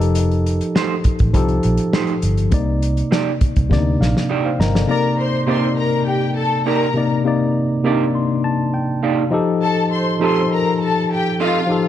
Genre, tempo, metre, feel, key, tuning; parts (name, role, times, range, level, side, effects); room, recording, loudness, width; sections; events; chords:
lush 1970s-style soul; 102 BPM; 4/4; straight; C dorian; A4 = 440 Hz
tine electric piano; accompaniment; 0.0-11.9 s; C3 to C6; -18 LUFS; left 1 dB; auto-pan
vintage muted fingered electric bass; bass; 0.0-4.8 s; F1 to D2; -18 LUFS; equal
warm soul drum kit; drums; 0.0-4.9 s; hi-hat, kick drum, snare drum; -19 LUFS; equal
electric guitar through a small old amp; riff; 0.8-11.6 s; A3 to Eb5; -23 LUFS; right 7 dB
dark studio string section; second line; 4.9-11.8 s; F4 to C6; -20 LUFS; left 3 dB
light reverb, small room ambience; dark, warm production; -15 LUFS; side -11 dB against mid
0.0-4.9 A section; 4.9-11.9 B section
drum fill 3.7-4.9; tine electric piano fill 3.7-4.9, 7.8-9.6
0.0 F9; 2.5 Cm9; 9.3 F9